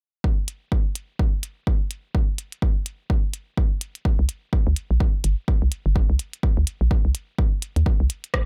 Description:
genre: minimal techno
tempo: 126 BPM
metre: 4/4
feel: swing 59% on 16ths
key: C minor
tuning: A4 = 440 Hz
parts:
  - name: electronic kick drum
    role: drums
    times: 0.2-8.4 s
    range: none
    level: -23 LUFS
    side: equal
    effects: none
  - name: minimal click drum kit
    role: drums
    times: 0.5-8.4 s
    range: hi-hat, rim click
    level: -31 LUFS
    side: equal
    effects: none
  - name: hollow knocking FM bass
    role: bass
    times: 4.2-8.1 s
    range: G1 to Eb2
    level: -22 LUFS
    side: equal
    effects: tube saturation, sidechain pumping
room: little or no reverb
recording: echo-heavy mix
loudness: -23 LUFS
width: mono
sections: 0.2-7.9 A section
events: none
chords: none

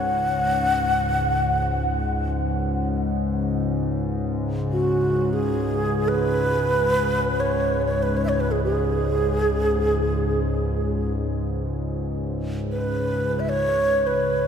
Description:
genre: world meditative, free-time meditation music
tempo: free time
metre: none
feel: none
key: unclear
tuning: A4 = 440 Hz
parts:
  - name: breathy xiao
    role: melody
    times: 0.0-14.5 s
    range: F#4 to F#5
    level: -23 LUFS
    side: right 1 dB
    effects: tape echo
  - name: analog drone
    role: drone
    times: 0.0-14.5 s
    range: C#2 to G#2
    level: -24 LUFS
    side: left 1 dB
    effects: chorus
  - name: barky tine electric piano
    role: texture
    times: 0.0-5.2 s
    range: none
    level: barely audible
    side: none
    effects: none
room: wet cathedral reverb, RT60 6.0 s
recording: in a vast, echoing space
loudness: -20 LUFS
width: side -7 dB against mid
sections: 0.0-14.5 A section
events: none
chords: none

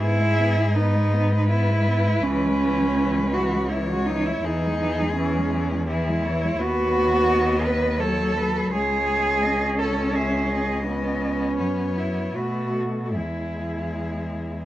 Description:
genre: classical, lyrical piece for cello ensemble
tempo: 74-86 BPM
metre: 3/4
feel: rubato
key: unclear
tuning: A4 = 440 Hz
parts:
  - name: rich cello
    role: melody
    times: 0.0-14.7 s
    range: G#4 to E5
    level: -32 LUFS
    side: left 3 dB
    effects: none
  - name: dark cello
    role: second line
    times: 0.0-14.7 s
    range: C#4 to B4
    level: -24 LUFS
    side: right 2 dB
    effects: none
  - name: warm cello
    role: accompaniment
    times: 0.0-14.7 s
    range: E3 to C#4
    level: -29 LUFS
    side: left 2 dB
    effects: none
  - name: warm cello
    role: bass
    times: 0.0-14.7 s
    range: C#2 to B2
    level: -25 LUFS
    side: equal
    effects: none
room: light reverb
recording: worn, warbling old tape, cassette tape, warbly pitch drift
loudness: -20 LUFS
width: side -14 dB against mid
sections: 0.0-14.7 A section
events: none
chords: 0.0 E/G#; 2.2 C#m; 4.4 C#m/E; 6.6 B/D#; 8.7 C#5; 10.9 Badd9/C#; 11.6 F#5; 12.3 B5; 13.1 E

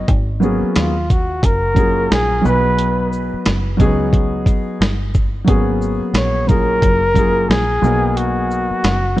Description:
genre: hip hop, jazz-hop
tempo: 89 BPM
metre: 4/4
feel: swing 61% on 16ths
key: unclear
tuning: A4 = 439 Hz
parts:
  - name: dark grand piano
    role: accompaniment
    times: 0.0-9.2 s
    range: F#3 to B4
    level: -19 LUFS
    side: equal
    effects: none
  - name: deep dub fingered electric bass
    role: bass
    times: 0.0-9.2 s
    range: F#1 to D#2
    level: -21 LUFS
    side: equal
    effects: none
  - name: dusty soul sampler-style drum kit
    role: drums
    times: 0.1-9.0 s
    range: hi-hat, kick drum, shaker, snare drum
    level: -17 LUFS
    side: equal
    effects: vintage 12-bit sampler grit
  - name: breathy flugelhorn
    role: melody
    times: 0.8-9.2 s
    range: E#4 to C#5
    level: -18 LUFS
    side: equal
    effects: analog delay
room: light reverb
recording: cassette tape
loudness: -14 LUFS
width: side -15 dB against mid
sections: 0.0-9.2 A section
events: none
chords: 0.1 G#m11; 1.4 F#maj9; 2.4 B; 3.8 C#9sus4; 5.5 G#m11; 6.8 F#maj9; 7.8 Bmaj7

